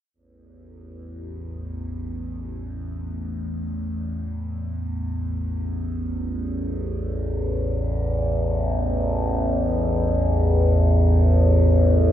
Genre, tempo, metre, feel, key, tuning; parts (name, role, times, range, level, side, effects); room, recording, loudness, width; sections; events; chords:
ambient; free time; A4 = 442 Hz
overtone-sweeping drone; drone; 0.7-12.1 s; A1 to E2; -21 LUFS; equal; chorus, built-in reverb, phaser
moderate spring reverb, RT60 2.7 s; cassette tape, nothing above 7.5 kHz; -21 LUFS; side -11 dB against mid
0.1-12.1 A section
fade-in on synth drone 0.1-12.1
0.1 A5